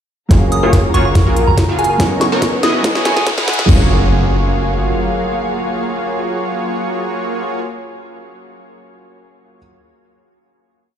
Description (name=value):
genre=future bass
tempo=142 BPM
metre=4/4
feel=half-time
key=F# major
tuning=A4 = 440 Hz
part: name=warm baby grand piano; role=accompaniment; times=0.3-9.6 s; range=F#3 to E#5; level=-22 LUFS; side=right 2 dB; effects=sidechain pumping, tape echo
part: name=dark studio string section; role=sustained chords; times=0.3-7.6 s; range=F#3 to D#6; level=-26 LUFS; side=left 2 dB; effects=sidechain pumping, low-pass filter
part: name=thumb-piano-like synth pluck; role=arpeggios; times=0.3-3.9 s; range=D#4 to B4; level=-26 LUFS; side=left 1 dB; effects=none
part: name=supersaw stab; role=riff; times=0.3-7.6 s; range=A#3 to F#5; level=-19 LUFS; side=right 1 dB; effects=sidechain pumping, low-pass filter, tape echo
part: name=warm 808-style bass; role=bass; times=0.3-4.9 s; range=F#1 to A#1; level=-17 LUFS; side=equal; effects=sidechain pumping
part: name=electronic kick drum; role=drums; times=0.3-3.8 s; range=none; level=-13 LUFS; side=equal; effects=none
part: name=trap drum kit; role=drums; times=0.3-3.8 s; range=crash cymbal, hi-hat, snare drum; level=-21 LUFS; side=left 1 dB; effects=none
part: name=riser and impact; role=sound effects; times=1.7-7.7 s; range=none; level=-23 LUFS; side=equal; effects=none
part: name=soft synth bell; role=melody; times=0.5-3.2 s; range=G#5 to D#6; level=-21 LUFS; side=right 1 dB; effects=chorus, phaser, sidechain pumping, digital delay
room=light reverb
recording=played on a big sound system in a bare room, large studio reverb, high-pass filter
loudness=-13 LUFS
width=side -9 dB against mid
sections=0.3-3.7 build; 3.7-7.1 final chord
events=build-up 0.3-3.7; drum fill 0.3-3.7; filter sweep on supersaw synth 0.3-3.7; filter sweep 0.3-3.7; riser 1.7-3.7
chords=0.3 F#maj9; 2.0 Bmaj9/F#; 2.8 Emaj9/F#; 3.7 F#maj9